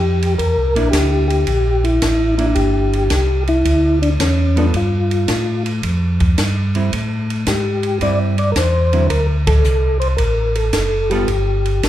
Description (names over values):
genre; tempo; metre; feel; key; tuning
soul jazz organ trio; 110 BPM; 4/4; swing 68% on 8ths; unclear; A4 = 440 Hz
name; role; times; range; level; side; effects
percussive tonewheel organ; melody; 0.0-11.9 s; C#4 to D5; -18 LUFS; left 1 dB; slow rotary speaker, chorus vibrato
mellow tonewheel organ; bass; 0.0-11.9 s; F#1 to A2; -17 LUFS; equal; chorus vibrato, slow rotary speaker
compact cocktail drum kit; drums; 0.2-11.9 s; hi-hat, kick drum, ride cymbal, snare drum; -22 LUFS; equal; none
hollow-body jazz guitar; accompaniment; 0.8-11.3 s; D3 to A4; -23 LUFS; right 3 dB; none
room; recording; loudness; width
light reverb; none; -14 LUFS; side -12 dB against mid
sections
0.0-11.9 A section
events
band accent 9.4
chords
0.0 C9; 4.7 Gsus2; 6.9 Am7; 9.1 D7; 11.3 Gsus2